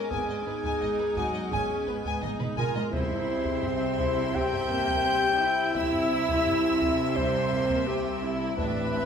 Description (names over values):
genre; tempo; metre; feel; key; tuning
cinematic, suspense film score; 85 BPM; 4/4; straight; unclear; A4 = 440 Hz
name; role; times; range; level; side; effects
dark clarinet; second line; 0.0-9.1 s; Gb4 to G5; -29 LUFS; left 2 dB; none
rich chamber violin section; second line; 0.0-9.1 s; Gb5 to G6; -36 LUFS; right 1 dB; none
rich studio viola section; accompaniment; 0.0-9.1 s; G3 to F4; -33 LUFS; right 1 dB; none
icy glass pad; sustained chords; 0.0-9.1 s; Cb4 to E5; -42 LUFS; equal; chorus, built-in reverb
mellow French horn section; sustained chords; 0.0-9.1 s; Gb3 to Bb4; -32 LUFS; equal; none
bright chamber violin section; texture; 0.0-2.5, 8.6-9.1 s; Ab5 to D6; -47 LUFS; left 4 dB; none
vibraphone with soft mallets; texture; 0.0-8.6 s; C5 to F6; -41 LUFS; left 5 dB; none
rich studio violin section; melody; 0.1-9.1 s; Cb5 to Ab5; -35 LUFS; left 3 dB; none
clear chamber double bass section; bass; 0.1-9.1 s; Ab1 to C2; -37 LUFS; right 4 dB; none
rich chamber cello section; bass; 0.1-9.1 s; Ab2 to C3; -34 LUFS; right 2 dB; none
taiko ensemble; drums; 0.1-9.1 s; none; -36 LUFS; right 1 dB; none
timpani; percussion; 2.9-3.9 s; C3; -40 LUFS; equal; none
room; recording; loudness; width
wet recital hall reverb, RT60 1.2 s; recorded in a church or concert hall; -24 LUFS; side -7 dB against mid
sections
0.0-9.1 A section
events
drum fill 2.2-2.9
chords
0.0 Abm; 2.9 C